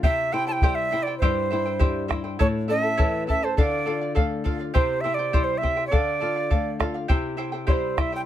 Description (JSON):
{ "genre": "andean folk, Andean ensemble", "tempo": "102 BPM", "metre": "2/4", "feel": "straight", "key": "unclear", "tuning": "A4 = 439 Hz", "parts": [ { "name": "reedy quena", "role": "melody", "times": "0.0-8.2 s", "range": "C5 to A5", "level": "-25 LUFS", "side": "right 3 dB", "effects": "none" }, { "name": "charango", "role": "accompaniment", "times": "0.0-8.3 s", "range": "E4 to A5", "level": "-28 LUFS", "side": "equal", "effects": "none" }, { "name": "flamenco guitar", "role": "accompaniment", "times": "0.0-8.3 s", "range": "G2 to F4", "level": "-30 LUFS", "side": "left 5 dB", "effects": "none" }, { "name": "bombo", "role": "percussion", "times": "0.0-8.1 s", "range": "none", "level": "-22 LUFS", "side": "left 1 dB", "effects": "none" } ], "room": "little or no reverb", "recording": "close, detailed microphones", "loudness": "-21 LUFS", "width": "side -11 dB against mid", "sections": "0.0-7.1 A section; 7.1-8.3 B section", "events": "none", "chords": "0.0 C; 2.4 A; 3.6 Dm; 4.7 C; 5.9 Dm; 7.1 C" }